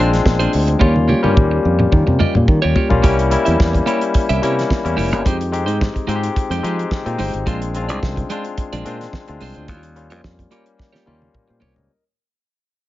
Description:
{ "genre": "disco", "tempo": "108 BPM", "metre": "4/4", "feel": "straight", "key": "unclear", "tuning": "A4 = 440 Hz", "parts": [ { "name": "barky tine electric piano", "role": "accompaniment", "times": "0.0-12.0 s", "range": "G3 to G5", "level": "-20 LUFS", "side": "left 4 dB", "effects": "overdrive" }, { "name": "clean electric guitar", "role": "accompaniment", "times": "0.0-11.8 s", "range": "Ab3 to E5", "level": "-23 LUFS", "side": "right 4 dB", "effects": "none" }, { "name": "fingered electric bass", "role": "bass", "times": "0.0-11.9 s", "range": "F1 to F3", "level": "-19 LUFS", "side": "equal", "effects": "none" }, { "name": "damped 70s drum kit", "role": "drums", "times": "0.1-11.9 s", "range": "hi-hat, kick drum, snare drum, toms", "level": "-18 LUFS", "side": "equal", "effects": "none" } ], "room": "small room ambience", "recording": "nothing above 7.5 kHz", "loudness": "-14 LUFS", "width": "side -15 dB against mid", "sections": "0.0-3.0 A section; 3.0-11.9 B section", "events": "drum fill 0.8-3.0, 10.8-11.9; fade-out 3.0-11.9; tine electric piano fill 6.6-7.5", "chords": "0.0 Bb9; 0.8 Eb9; 3.0 C7b9; 5.2 Fm9; 7.5 Bb9; 9.7 Eb9" }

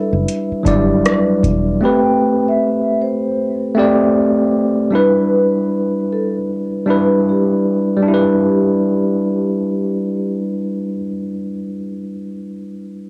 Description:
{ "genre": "lo-fi hip hop", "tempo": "77 BPM", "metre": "4/4", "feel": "swing 63% on 16ths", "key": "E minor", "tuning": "A4 = 440 Hz", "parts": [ { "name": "vibraphone with soft mallets", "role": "melody", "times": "0.0-10.4 s", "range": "G4 to G5", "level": "-24 LUFS", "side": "equal", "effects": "cassette tape, tape echo" }, { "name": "tine electric piano", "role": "accompaniment", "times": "0.0-13.1 s", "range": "F#3 to E5", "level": "-18 LUFS", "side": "equal", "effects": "cassette tape" }, { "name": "fingered electric bass", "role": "bass", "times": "0.1-1.8 s", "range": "E1 to G1", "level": "-21 LUFS", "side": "equal", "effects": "none" }, { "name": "booming analog drum machine", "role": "drums", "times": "0.3-1.7 s", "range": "hi-hat, kick drum, rim click", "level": "-22 LUFS", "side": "equal", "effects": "cassette tape" } ], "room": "moderate small room reverb, RT60 0.5 s", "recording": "home recording on cassette", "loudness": "-16 LUFS", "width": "mono", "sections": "0.0-8.1 A section; 8.1-11.2 B section", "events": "none", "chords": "0.0 Em7; 1.8 Am9; 4.9 Em7" }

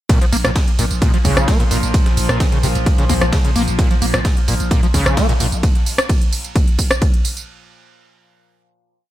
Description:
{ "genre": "driving peak-time techno", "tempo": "130 BPM", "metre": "4/4", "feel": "straight", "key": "Bb minor", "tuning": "A4 = 442 Hz", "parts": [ { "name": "screaming distorted acid line", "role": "riff", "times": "0.1-5.5 s", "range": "Bb2 to Bb3", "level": "-21 LUFS", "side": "equal", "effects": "distortion, analog chorus, sidechain pumping, ping-pong delay" }, { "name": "overtone-sweeping drone", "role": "drone", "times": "0.9-5.7 s", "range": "Bb2 to F3", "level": "-25 LUFS", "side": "equal", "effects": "chorus, built-in reverb, sidechain pumping" }, { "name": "breakbeat sampler-style drum kit", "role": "drums", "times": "0.1-5.5 s", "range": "hi-hat, snare drum", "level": "-30 LUFS", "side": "equal", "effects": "sidechain pumping on hats, high-pass filter on hats, studio reverb, high-pass filter on snare" }, { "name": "electronic kick drum", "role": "drums", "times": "0.1-7.1 s", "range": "none", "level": "-15 LUFS", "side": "equal", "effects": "overdrive, studio reverb" }, { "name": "techno drum kit", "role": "drums", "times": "0.1-7.5 s", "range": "hi-hat, ride cymbal, rim click, tambourine", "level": "-22 LUFS", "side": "right 1 dB", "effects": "overdrive, studio reverb" }, { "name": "growling 808-style bass", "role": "bass", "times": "0.3-5.6 s", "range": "Bb1", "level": "-20 LUFS", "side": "equal", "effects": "tube saturation, sidechain pumping, low-pass filter" } ], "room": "little or no reverb", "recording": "none", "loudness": "-14 LUFS", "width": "side -14 dB against mid", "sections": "0.1-7.5 drop", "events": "drop 0.1-7.5", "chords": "0.1 Bb5" }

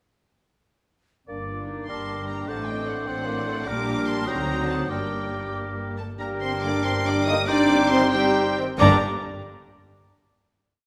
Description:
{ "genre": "classical, dramatic, fast romantic movement for symphony orchestra", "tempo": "85-102 BPM (dotted quarters)", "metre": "6/8", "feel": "rubato", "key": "G minor", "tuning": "A4 = 440 Hz", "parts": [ { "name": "clear oboe", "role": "second line", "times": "1.3-9.0 s", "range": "Bb4 to D5", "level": "-34 LUFS", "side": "equal", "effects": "none" }, { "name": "mellow clarinet", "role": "second line", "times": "1.3-9.0 s", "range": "C4 to F4", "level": "-34 LUFS", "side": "equal", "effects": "none" }, { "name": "mellow hollow silver concert flute", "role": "second line", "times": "1.3-9.0 s", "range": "G5 to F6", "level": "-34 LUFS", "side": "equal", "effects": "none" }, { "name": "warm bassoon", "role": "accompaniment", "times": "1.3-9.0 s", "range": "F#3 to C4", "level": "-33 LUFS", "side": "equal", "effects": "none" }, { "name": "mellow French horn section", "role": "sustained chords", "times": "1.3-9.0 s", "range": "F#3 to Eb4", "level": "-31 LUFS", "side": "equal", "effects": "none" }, { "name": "clear symphonic double bass section", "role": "bass", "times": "1.3-9.0 s", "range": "G1 to D2", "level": "-34 LUFS", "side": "equal", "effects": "none" }, { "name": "rich studio cello section", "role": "bass", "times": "1.3-9.0 s", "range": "G2 to D3", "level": "-34 LUFS", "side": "equal", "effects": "none" }, { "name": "rich symphonic viola section", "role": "accompaniment", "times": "1.5-9.0 s", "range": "Bb3 to G4", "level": "-34 LUFS", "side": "equal", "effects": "none" }, { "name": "rich symphonic violin section", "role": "melody", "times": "1.9-9.0 s", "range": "F#5 to Eb6", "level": "-34 LUFS", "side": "equal", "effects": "none" }, { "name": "warm symphonic violin section", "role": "second line", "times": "1.9-9.0 s", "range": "G4 to Bb5", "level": "-36 LUFS", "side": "equal", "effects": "none" }, { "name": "warm trombone section", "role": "sustained chords", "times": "6.6-9.0 s", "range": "D3 to D4", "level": "-33 LUFS", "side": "equal", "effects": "none" } ], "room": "moderate scoring stage reverb, RT60 1.6 s", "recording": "none", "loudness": "-24 LUFS", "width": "mono", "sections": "1.3-6.2 A section; 6.2-8.8 coda; 8.8-10.0 final chord", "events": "none", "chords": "1.3 Gm; 2.5 D7/A; 3.7 Gm/Bb; 4.3 D7b9; 4.9 Gm; 7.5 Cm/G; 8.8 G5" }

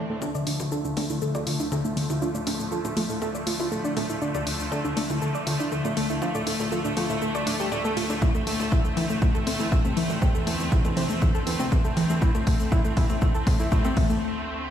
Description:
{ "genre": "melodic techno", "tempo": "120 BPM", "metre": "4/4", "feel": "straight", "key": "D minor", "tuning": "A4 = 439 Hz", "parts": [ { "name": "fat analog lead", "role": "melody", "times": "0.0-14.2 s", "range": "D3 to A4", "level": "-29 LUFS", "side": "left 1 dB", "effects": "vintage 12-bit sampler grit, sidechain pumping, dub echo" }, { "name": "clear studio string section", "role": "sustained chords", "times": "0.0-14.7 s", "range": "D2 to C4", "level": "-31 LUFS", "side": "right 1 dB", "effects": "sidechain pumping, low-pass filter" }, { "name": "warbly dusty pluck", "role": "arpeggios", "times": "0.0-14.2 s", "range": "E3 to D5", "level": "-30 LUFS", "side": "equal", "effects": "chorus, vintage 12-bit sampler grit, sidechain pumping, tape echo" }, { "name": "electronic congas, shaker and hi-hat", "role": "drums", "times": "0.2-14.2 s", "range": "none", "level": "-34 LUFS", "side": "left 3 dB", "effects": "high-pass filter on perc, high-pass filter on hats" }, { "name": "electronic kick drum", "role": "drums", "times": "8.2-14.1 s", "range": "none", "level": "-23 LUFS", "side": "equal", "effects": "none" } ], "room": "moderate lush hall reverb, RT60 2.3 s", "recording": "played on a big sound system in a bare room, stone room reverb", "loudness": "-23 LUFS", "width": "side -10 dB against mid", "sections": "0.2-14.7 A section", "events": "build-up 0.2-14.7; filter sweep on analog synth lead 0.2-14.7; filter sweep on string section 0.2-14.7; drum fill 8.2-14.2; break 14.2-14.7", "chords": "0.2 Dm; 8.2 Am/D" }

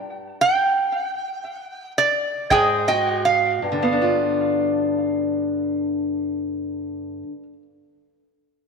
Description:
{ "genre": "acoustic country blues, solo or duo", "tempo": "52-61 BPM (dotted quarters)", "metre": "12/8", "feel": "straight", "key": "G mixolydian", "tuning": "A4 = 440 Hz", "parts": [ { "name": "lap resonator guitar", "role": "melody", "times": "0.4-3.6 s", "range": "Ab4 to G5", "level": "-20 LUFS", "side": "right 2 dB", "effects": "tape echo" }, { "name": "fingerpicked steel-string acoustic guitar", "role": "accompaniment", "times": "2.5-7.6 s", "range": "G2 to F#4", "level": "-22 LUFS", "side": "left 2 dB", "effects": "none" }, { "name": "kick drum", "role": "drums", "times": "2.5-2.7 s", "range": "none", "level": "-29 LUFS", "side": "left 1 dB", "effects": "none" } ], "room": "wet echo chamber reverb, RT60 2.2 s", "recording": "1960s-style stereo", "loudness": "-19 LUFS", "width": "side -4 dB against mid", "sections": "0.0-3.6 A section; 3.6-8.2 B section", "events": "slowing down 0.0-3.6; resonator guitar played with a steel bar solo 0.0-3.6; stop 0.0-2.5", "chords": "0.0 N.C.; 2.5 Ab5; 3.6 G7" }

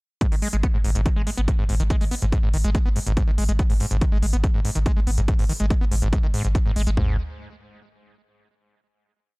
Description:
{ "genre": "driving peak-time techno", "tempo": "142 BPM", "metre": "4/4", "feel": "straight", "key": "G# minor", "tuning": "A4 = 441 Hz", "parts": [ { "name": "screaming distorted acid line", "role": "riff", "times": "0.2-7.2 s", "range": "G#2 to B3", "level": "-28 LUFS", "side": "equal", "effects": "distortion, chorus, sidechain pumping, tape echo" }, { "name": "electronic hi-hat", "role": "drums", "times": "0.2-7.0 s", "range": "none", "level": "-33 LUFS", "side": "equal", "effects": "overdrive, sidechain pumping on hats" }, { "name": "techno drum kit", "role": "drums", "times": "0.2-7.1 s", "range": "kick drum, toms", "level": "-21 LUFS", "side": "equal", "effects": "overdrive" }, { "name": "saturated sub bass", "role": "bass", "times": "0.3-7.2 s", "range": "G#1", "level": "-23 LUFS", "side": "equal", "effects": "tube saturation, sidechain pumping, low-pass filter" } ], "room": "digital ambience", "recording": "dry, gritty hardware recording", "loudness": "-19 LUFS", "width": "side -28 dB against mid", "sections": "0.2-7.0 groove; 7.0-8.7 final note", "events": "none", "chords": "0.2 G#5; 7.0 N.C." }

